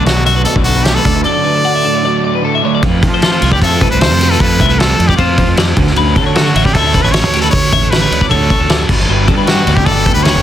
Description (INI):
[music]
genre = math rock and midwest emo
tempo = 153 BPM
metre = 4/4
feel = straight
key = unclear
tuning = A4 = 440 Hz
[part]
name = brilliant trumpet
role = melody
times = 0.0-10.4 s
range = F4 to D5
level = -16 LUFS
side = equal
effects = tape echo
[part]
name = twelve-string electric guitar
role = accompaniment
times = 0.0-10.4 s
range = D2 to F#4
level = -19 LUFS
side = right 11 dB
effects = none
[part]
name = twelve-string electric guitar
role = arpeggios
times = 0.0-10.4 s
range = G4 to F#5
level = -18 LUFS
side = left 8 dB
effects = spring reverb
[part]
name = overdriven semi-hollow guitar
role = riff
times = 0.0-2.8, 9.1-10.4 s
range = G2 to G4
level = -19 LUFS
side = left 2 dB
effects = none
[part]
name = fuzz fingered electric bass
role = bass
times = 0.0-10.4 s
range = G1 to F3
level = -15 LUFS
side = equal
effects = overdrive
[part]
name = loose indie drum kit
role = drums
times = 0.1-10.3 s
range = crash cymbal, hi-hat, kick drum, ride cymbal, snare drum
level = -14 LUFS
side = equal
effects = soft clipping on kick
[sound]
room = little or no reverb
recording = dense, heavily limited modern master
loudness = -9 LUFS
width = side -11 dB against mid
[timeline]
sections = 0.0-2.8 A section; 2.8-10.4 B section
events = none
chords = 0.0 Bm7; 1.1 D6; 2.8 Fmaj7; 5.8 Dmaj7; 8.9 Gmaj7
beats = 0.07 0.46 0.86 | 1.25 1.65 2.04 2.44 | 2.83 3.22 3.62 4.01 | 4.40 4.79 5.18 5.58 | 5.97 6.36 6.75 7.14 | 7.53 7.92 8.31 8.70 | 9.09 9.48 9.87 10.25